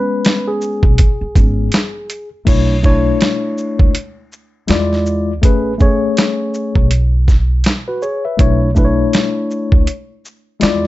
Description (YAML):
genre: hip hop, jazz-hop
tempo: 81 BPM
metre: 4/4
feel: swing 60% on 16ths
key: B dorian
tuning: A4 = 440 Hz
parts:
  - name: mellow tine electric piano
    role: accompaniment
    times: 0.0-10.9 s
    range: G#3 to E5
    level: -17 LUFS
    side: left 3 dB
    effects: auto-pan, plate reverb
  - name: boom bap sampler-style drum kit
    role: drums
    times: 0.2-10.8 s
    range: crash cymbal, hi-hat, kick drum, shaker, snare drum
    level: -13 LUFS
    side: equal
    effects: overdrive
  - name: upright bass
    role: bass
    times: 0.8-10.9 s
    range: G#1 to E2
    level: -17 LUFS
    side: right 1 dB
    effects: none
room: light reverb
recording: dark, warm production, nothing above 7.9 kHz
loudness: -12 LUFS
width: side -16 dB against mid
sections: 0.0-2.5 A section; 2.5-10.9 B section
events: tine electric piano solo 0.0-2.5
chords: 0.0 Amaj9 (rootless); 2.5 Bm11; 4.7 E7b9; 5.4 Amaj9; 8.4 Bm11